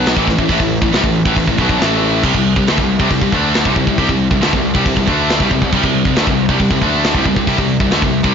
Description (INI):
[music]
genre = heavy metal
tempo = 137 BPM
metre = 4/4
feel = straight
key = unclear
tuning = A4 = 441 Hz
[part]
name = heavy high-gain guitar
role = riff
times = 0.0-8.3 s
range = A2 to D4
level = -18 LUFS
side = right 13 dB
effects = distortion
[part]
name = tight distorted guitar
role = riff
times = 0.0-8.3 s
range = A2 to D4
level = -18 LUFS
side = left 13 dB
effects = distortion
[part]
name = fuzz picked electric bass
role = bass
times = 0.0-8.3 s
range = A1 to D2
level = -19 LUFS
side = equal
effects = overdrive
[part]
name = tight metal drum kit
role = drums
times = 0.1-8.3 s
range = crash cymbal, hi-hat, kick drum, snare drum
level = -17 LUFS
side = equal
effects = none
[sound]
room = small room ambience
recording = blown-out, overdriven recording, overdrive, nothing above 7.5 kHz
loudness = -12 LUFS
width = side -7 dB against mid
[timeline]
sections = 0.0-8.3 A section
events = none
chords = 0.0 A5; 2.2 C5